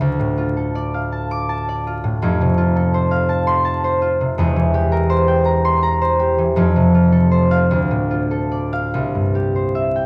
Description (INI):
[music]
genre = classical, solo harp piece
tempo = 48-57 BPM (dotted quarters)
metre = 6/8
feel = rubato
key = F major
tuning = A4 = 440 Hz
[part]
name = concert harp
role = solo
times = 0.0-10.1 s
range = E1 to D6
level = -18 LUFS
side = equal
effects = none
[sound]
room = wet recital hall reverb, RT60 1.5 s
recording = vinyl crackle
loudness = -18 LUFS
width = mono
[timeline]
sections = 0.0-10.1 A section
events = none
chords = 0.0 Dm; 2.2 F; 4.4 C7/E; 6.6 F; 7.7 Dm; 8.9 C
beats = | 0.01 1.12 | 2.22 3.29 | 4.38 5.45 | 6.57 7.72 | 8.94